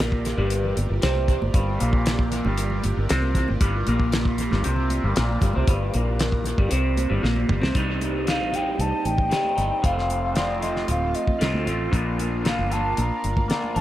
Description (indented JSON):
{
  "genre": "psychedelic rock",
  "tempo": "116 BPM",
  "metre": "4/4",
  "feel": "straight",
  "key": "unclear",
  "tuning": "A4 = 441 Hz",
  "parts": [
    { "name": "string machine, violas", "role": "sustained chords", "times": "0.0-13.8 s", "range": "Eb4 to F5", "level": "-36 LUFS", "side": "right 2 dB", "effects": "ensemble chorus" },
    { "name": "electric guitar through a small old amp", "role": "riff", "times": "0.0-13.8 s", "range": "C2 to Bb4", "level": "-26 LUFS", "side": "equal", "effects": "phaser, dub echo" },
    { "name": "fingered electric bass", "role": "bass", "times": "0.0-13.8 s", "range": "D1 to D2", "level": "-25 LUFS", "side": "equal", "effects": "none" },
    { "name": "tanpura", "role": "drone", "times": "0.0-13.8 s", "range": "C2 to C3", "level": "-38 LUFS", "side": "right 1 dB", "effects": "none" },
    { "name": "damped 70s drum kit", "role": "drums", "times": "0.0-13.8 s", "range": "hi-hat, kick drum, snare drum, toms", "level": "-25 LUFS", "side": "equal", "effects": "dub echo" },
    { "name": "congas", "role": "percussion", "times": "0.3-13.8 s", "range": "none", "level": "-37 LUFS", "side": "right 2 dB", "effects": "none" },
    { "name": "mellow hollow concert flute", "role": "melody", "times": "8.3-13.8 s", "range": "D5 to Bb5", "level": "-26 LUFS", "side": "equal", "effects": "dub echo" }
  ],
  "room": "light reverb, small room ambience",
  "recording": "echo-heavy mix",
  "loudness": "-20 LUFS",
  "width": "side -14 dB against mid",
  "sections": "0.0-7.8 A section; 7.8-13.8 B section",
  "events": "drum fill 7.2-7.8",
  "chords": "0.0 Gm7; 7.8 Cm; 9.8 F; 11.9 Bb"
}